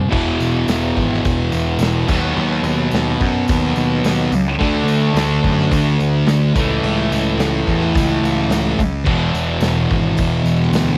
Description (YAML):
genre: garage rock duo or trio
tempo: 107 BPM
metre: 4/4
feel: straight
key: unclear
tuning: A4 = 440 Hz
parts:
  - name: thick fuzz guitar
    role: riff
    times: 0.0-11.0 s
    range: E2 to D4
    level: -19 LUFS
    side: equal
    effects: distortion, cassette tape
  - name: fuzz picked electric bass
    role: bass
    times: 0.1-11.0 s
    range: E1 to F#2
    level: -22 LUFS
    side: equal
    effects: overdrive
  - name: vintage drum kit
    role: drums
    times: 0.1-10.9 s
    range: crash cymbal, hi-hat, kick drum, snare drum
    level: -25 LUFS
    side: equal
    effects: cassette tape
  - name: tambourine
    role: percussion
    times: 0.4-10.9 s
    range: none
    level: -42 LUFS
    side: equal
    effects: none
room: little or no reverb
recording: home recording on cassette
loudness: -17 LUFS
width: mono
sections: 0.1-11.0 A section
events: none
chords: 0.1 E5; 2.1 B/D#; 4.6 D; 6.5 A/C#; 9.1 E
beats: | 0.11 0.67 1.23 1.79 | 2.35 2.91 3.47 4.03 | 4.59 5.15 5.71 6.27 | 6.83 7.39 7.95 8.51 | 9.07 9.63 10.19 10.75